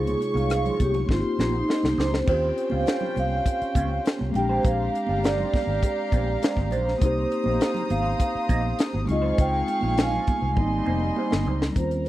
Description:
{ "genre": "lush 1970s-style soul", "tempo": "101 BPM", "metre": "4/4", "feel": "straight", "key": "Ab major", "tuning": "A4 = 440 Hz", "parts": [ { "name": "vibraphone with soft mallets", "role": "melody", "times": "0.0-12.1 s", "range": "Eb4 to Ab5", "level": "-27 LUFS", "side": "right 2 dB", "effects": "none" }, { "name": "warm symphonic violin section", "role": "second line", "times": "0.0-12.1 s", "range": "G3 to Eb6", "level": "-34 LUFS", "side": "left 1 dB", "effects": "none" }, { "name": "mellow tine electric piano", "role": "accompaniment", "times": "0.0-12.1 s", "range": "C3 to G4", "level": "-29 LUFS", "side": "left 2 dB", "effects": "slow stereo tremolo" }, { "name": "electric guitar through a small old amp", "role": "riff", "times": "0.0-11.7 s", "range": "G3 to Eb5", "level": "-33 LUFS", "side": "right 4 dB", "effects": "wah, phaser" }, { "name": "vintage muted fingered electric bass", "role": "bass", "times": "0.0-12.1 s", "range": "F1 to Eb2", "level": "-27 LUFS", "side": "equal", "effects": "none" }, { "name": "tight funk drum kit", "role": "drums", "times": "0.1-12.1 s", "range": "crash cymbal, hi-hat, kick drum, rim click, snare drum", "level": "-24 LUFS", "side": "equal", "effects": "none" }, { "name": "congas", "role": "percussion", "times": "0.1-12.1 s", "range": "none", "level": "-34 LUFS", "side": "right 4 dB", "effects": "none" } ], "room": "studio ambience", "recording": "dry, close 1970s-style studio recording", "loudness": "-21 LUFS", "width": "side -15 dB against mid", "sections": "0.0-2.3 A section; 2.3-11.8 B section", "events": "drum fill 1.1-2.3, 10.6-11.8", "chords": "0.0 Dbmaj9; 1.1 Abmaj9 (rootless); 2.3 Eb13 (rootless); 4.3 Bb13; 7.0 Abmaj9; 9.1 Dbmaj9; 10.6 Abmaj9" }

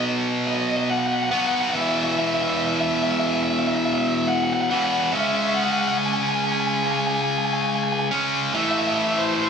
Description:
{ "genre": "rock", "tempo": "71 BPM", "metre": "4/4", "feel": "straight", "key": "E major", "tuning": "A4 = 438 Hz", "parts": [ { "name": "tight distorted guitar", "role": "riff", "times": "0.0-9.5 s", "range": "E2 to C#4", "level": "-22 LUFS", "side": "equal", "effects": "distortion" }, { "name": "overdriven electric guitar", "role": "melody", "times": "0.5-9.5 s", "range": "C5 to G#5", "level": "-24 LUFS", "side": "left 1 dB", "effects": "spring reverb, digital delay" } ], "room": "moderate large studio reverb, RT60 1.1 s", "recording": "none", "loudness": "-20 LUFS", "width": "side -6 dB against mid", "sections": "0.0-9.5 A section", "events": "none", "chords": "0.0 B; 1.8 E5; 5.1 C#5; 8.5 A5" }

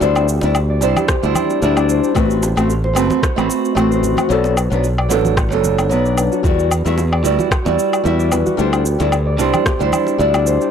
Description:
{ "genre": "sunset chillout", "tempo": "112 BPM", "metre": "4/4", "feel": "swing 54% on 16ths", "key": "unclear", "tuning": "A4 = 438 Hz", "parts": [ { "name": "nylon-string guitar", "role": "accompaniment", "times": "0.0-10.7 s", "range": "F#3 to B5", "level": "-17 LUFS", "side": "moving between left 7 dB and right 7 dB", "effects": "auto-pan, analog delay" }, { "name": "concert harp", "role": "arpeggios", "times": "0.0-10.7 s", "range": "F#4 to D5", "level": "-24 LUFS", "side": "right 1 dB", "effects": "vintage 12-bit sampler grit, analog delay" }, { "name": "modern bright fingered electric bass", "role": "bass", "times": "0.0-10.6 s", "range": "F#1 to E2", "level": "-18 LUFS", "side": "equal", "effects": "none" }, { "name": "electronic cabasa, woodblock and rim click", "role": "drums", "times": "0.0-10.7 s", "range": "none", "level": "-22 LUFS", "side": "left 1 dB", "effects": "none" }, { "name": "bongos and congas", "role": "percussion", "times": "0.2-10.4 s", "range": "none", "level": "-27 LUFS", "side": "right 2 dB", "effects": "none" }, { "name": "electronic kick drum", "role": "drums", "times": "1.1-9.8 s", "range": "none", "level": "-18 LUFS", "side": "equal", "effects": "none" } ], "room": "small room ambience", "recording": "dry, gritty hardware recording, transformer saturation", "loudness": "-14 LUFS", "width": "side -8 dB against mid", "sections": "0.0-10.7 A section", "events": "none", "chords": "0.0 D9sus4; 2.2 Am69; 4.3 Bm7; 6.4 Em9; 8.6 D9sus4" }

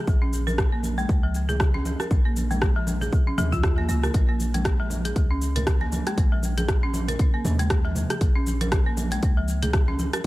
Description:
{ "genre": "afro house", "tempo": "118 BPM", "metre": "4/4", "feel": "swing 57% on 16ths", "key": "Bb minor", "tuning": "A4 = 440 Hz", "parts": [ { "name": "folk marimba with hard mallets", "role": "arpeggios", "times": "0.0-10.2 s", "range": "F3 to Bb4", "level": "-29 LUFS", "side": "equal", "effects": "sidechain pumping, tape echo" }, { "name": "warm 808-style bass", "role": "bass", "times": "0.1-10.3 s", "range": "Bb1 to Eb2", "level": "-26 LUFS", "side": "equal", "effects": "sidechain pumping" }, { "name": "electronic kick drum", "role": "drums", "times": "0.1-10.3 s", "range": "none", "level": "-22 LUFS", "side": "equal", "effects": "none" }, { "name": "house drum kit", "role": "drums", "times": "0.1-10.3 s", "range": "hi-hat, rim click, shaker", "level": "-30 LUFS", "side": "equal", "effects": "none" }, { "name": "congas", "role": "percussion", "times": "0.1-10.3 s", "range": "none", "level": "-32 LUFS", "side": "right 1 dB", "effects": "none" } ], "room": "little or no reverb", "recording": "none", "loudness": "-21 LUFS", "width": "side -18 dB against mid", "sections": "0.0-10.3 A section", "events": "none", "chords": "0.0 Bbm" }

